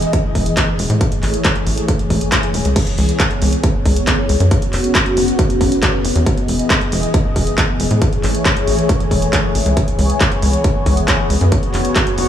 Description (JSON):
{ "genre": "uplifting trance", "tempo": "137 BPM", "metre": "4/4", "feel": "straight", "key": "C# minor", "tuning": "A4 = 440 Hz", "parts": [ { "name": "lush unison pad", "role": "sustained chords", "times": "0.0-12.3 s", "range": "C#3 to D#5", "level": "-19 LUFS", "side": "left 1 dB", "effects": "chorus, phaser, sidechain pumping" }, { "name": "tight sequencer bass", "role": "bass", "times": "0.0-12.3 s", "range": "E1 to A2", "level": "-17 LUFS", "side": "equal", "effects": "tube saturation, sidechain pumping" }, { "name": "punchy analog drum machine", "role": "drums", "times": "0.0-12.3 s", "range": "crash cymbal, handclaps, hi-hat", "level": "-21 LUFS", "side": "equal", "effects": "sidechain pumping on hats, sidechain pumping on cymbals" }, { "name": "electronic kick drum", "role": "drums", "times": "0.1-12.0 s", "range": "none", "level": "-17 LUFS", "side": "equal", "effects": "none" } ], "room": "light reverb, digital ambience", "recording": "small room reverb", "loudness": "-13 LUFS", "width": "side -10 dB against mid", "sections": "0.0-12.3 A section", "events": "filter sweep on analog synth pad 0.0-12.3", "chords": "0.0 Emaj7; 1.0 Amaj7; 2.8 C#m7; 4.5 F#sus4; 6.3 Emaj7; 8.0 Amaj7; 9.8 C#m7; 11.5 F#sus4" }